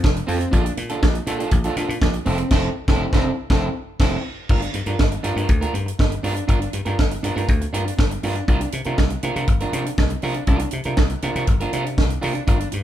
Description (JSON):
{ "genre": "disco", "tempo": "120 BPM", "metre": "4/4", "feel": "straight", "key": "unclear", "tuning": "A4 = 440 Hz", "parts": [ { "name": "electric guitar at the edge of break-up", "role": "accompaniment", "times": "0.0-12.8 s", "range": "C4 to Bb4", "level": "-25 LUFS", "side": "right 2 dB", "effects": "harmonic tremolo" }, { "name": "dry thumbed slap bass", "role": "bass", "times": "0.0-12.8 s", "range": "F1 to C3", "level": "-24 LUFS", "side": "left 1 dB", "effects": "none" }, { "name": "tight funk drum kit", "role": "drums", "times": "0.0-12.8 s", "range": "crash cymbal, hi-hat, kick drum, snare drum", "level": "-20 LUFS", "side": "equal", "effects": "none" } ], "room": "light reverb", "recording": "band playing live in one room", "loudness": "-18 LUFS", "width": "side -12 dB against mid", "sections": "0.0-4.5 A section; 4.5-12.8 B section", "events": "band accent 2.5-4.5", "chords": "0.0 F; 0.5 Bbmaj7; 2.3 Fmaj7; 4.5 Gm7; 8.5 C9sus4", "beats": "0.04 | 0.53 1.02 1.52 2.01 | 2.51 3.00 3.50 4.00 | 4.49 4.99 5.49 5.99 | 6.49 6.98 7.48 7.98 | 8.48 8.98 9.48 9.98 | 10.48 10.98 11.47 11.97 | 12.47" }